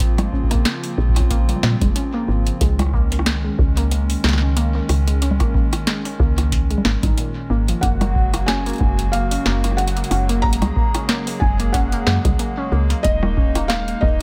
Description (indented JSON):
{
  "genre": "IDM",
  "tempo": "92 BPM",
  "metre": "4/4",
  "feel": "swing 56% on 16ths",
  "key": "unclear",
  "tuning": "A4 = 440 Hz",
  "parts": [
    { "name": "hollow soft pad", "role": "sustained chords", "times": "0.0-14.2 s", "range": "Db3 to Ab4", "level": "-30 LUFS", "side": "equal", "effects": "chorus, vintage 12-bit sampler grit" },
    { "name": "woody FM bass", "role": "bass", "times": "0.0-14.2 s", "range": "Eb1 to Bb2", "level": "-22 LUFS", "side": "equal", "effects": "none" },
    { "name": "booming analog drum machine", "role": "drums", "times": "0.0-14.0 s", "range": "congas, hi-hat, rim click, snare drum", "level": "-26 LUFS", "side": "equal", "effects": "none" },
    { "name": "electronic kick drum", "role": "drums", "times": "0.0-14.2 s", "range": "none", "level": "-22 LUFS", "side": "equal", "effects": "none" },
    { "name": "warbly dusty pluck", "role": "arpeggios", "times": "0.2-14.2 s", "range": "Bb2 to Eb4", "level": "-29 LUFS", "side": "equal", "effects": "chorus, tape echo" },
    { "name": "felt-muted upright piano", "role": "melody", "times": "7.8-14.2 s", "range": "Eb5 to Bb5", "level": "-27 LUFS", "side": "equal", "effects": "tape echo" }
  ],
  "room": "digital ambience",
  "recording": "none",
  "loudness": "-19 LUFS",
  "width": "mono",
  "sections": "0.0-14.2 A section",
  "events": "none",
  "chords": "0.0 Bbmadd9; 2.6 Dbsus2; 7.8 Gbadd9; 13.0 Ebsus4",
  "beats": "| 0.00 0.65 1.30 1.96 | 2.61 3.26 3.91 4.57 | 5.22 5.87 6.52 7.17 | 7.83 8.48 9.13 9.78 | 10.44 11.09 11.74 12.39 | 13.04 13.70"
}